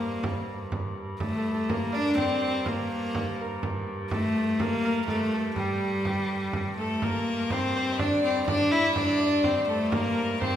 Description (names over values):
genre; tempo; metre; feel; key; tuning
medieval dance; 124 BPM; 3/4; straight; G minor; A4 = 439 Hz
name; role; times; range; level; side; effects
rich viola da gamba; melody; 0.0-10.6 s; G3 to E4; -27 LUFS; left 1 dB; none
Celtic harp; second line; 0.0-10.6 s; G4 to E5; -32 LUFS; equal; none
rich hurdy-gurdy; drone; 0.0-10.6 s; G2; -36 LUFS; equal; none
frame drum; percussion; 0.2-10.6 s; none; -33 LUFS; right 2 dB; none
clear fiddle; second line; 6.8-10.6 s; A4 to E5; -33 LUFS; left 3 dB; none
room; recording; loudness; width
wet recital hall reverb, RT60 1.5 s; recorded in a church or concert hall; -24 LUFS; side -10 dB against mid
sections
0.0-7.0 A section; 7.0-10.6 B section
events
none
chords
none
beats
0.22 0.71 | 1.19 1.68 2.17 | 2.65 3.14 3.63 | 4.11 4.60 5.09 | 5.57 6.06 6.54 | 7.03 7.51 8.00 | 8.48 8.97 9.45 | 9.94 10.42